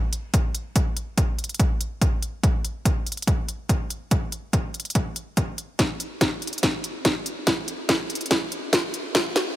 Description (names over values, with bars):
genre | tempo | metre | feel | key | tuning
future bass | 143 BPM | 4/4 | half-time | none | none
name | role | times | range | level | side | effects
trap drum kit | drums | 0.1-9.4 s | hi-hat, snare drum | -24 LUFS | equal | none
electronic kick drum | drums | 0.3-9.2 s | none | -23 LUFS | equal | overdrive
room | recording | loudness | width
light reverb | high-pass filter | -22 LUFS | side -14 dB against mid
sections
0.0-9.6 A section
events
build-up 0.0-9.6; filter sweep 0.0-9.6; drum fill 5.8-9.6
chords
none